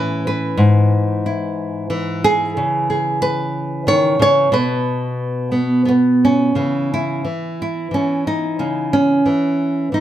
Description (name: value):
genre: folk, solo fingerstyle acoustic guitar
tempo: 90 BPM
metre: 3/4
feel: rubato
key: unclear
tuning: A4 = 443 Hz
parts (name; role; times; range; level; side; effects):
- nylon-string guitar; solo; 0.0-10.0 s; G#2 to C#5; -15 LUFS; equal; none
room: light reverb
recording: none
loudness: -15 LUFS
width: side -12 dB against mid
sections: 0.0-6.6 A section; 6.6-10.0 B section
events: none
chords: 0.0 A; 0.6 E/G#; 2.6 C#m; 4.5 N.C.; 6.6 C#m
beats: | 0.58 1.25 1.91 | 2.56 3.22 3.88 | 4.53 5.19 5.87 | 6.56 7.25 7.92 | 8.59 9.25 9.93